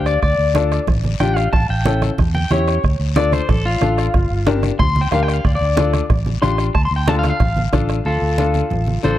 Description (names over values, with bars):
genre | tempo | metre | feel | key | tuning
latin, cumbia | 184 BPM | 4/4 | straight | D minor | A4 = 438 Hz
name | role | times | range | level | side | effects
electric guitar at the edge of break-up | melody | 0.0-9.2 s | F4 to C6 | -21 LUFS | left 2 dB | spring reverb
bright upright piano | accompaniment | 0.0-9.2 s | C#4 to C5 | -22 LUFS | left 6 dB | none
fingered electric bass | bass | 0.0-9.2 s | G1 to E2 | -19 LUFS | equal | none
bombo | percussion | 0.1-8.1 s | none | -20 LUFS | right 2 dB | none
guiro | percussion | 0.1-9.2 s | none | -36 LUFS | left 13 dB | none
congas | percussion | 0.2-9.2 s | none | -24 LUFS | right 2 dB | none
room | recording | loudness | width
light reverb | dark, warm production | -15 LUFS | side -13 dB against mid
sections
0.0-8.1 A section; 8.1-9.2 B section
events
clean electric guitar solo 0.0-8.1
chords
0.2 Dm; 1.5 A7; 2.8 Dm; 4.1 Gm; 5.4 Dm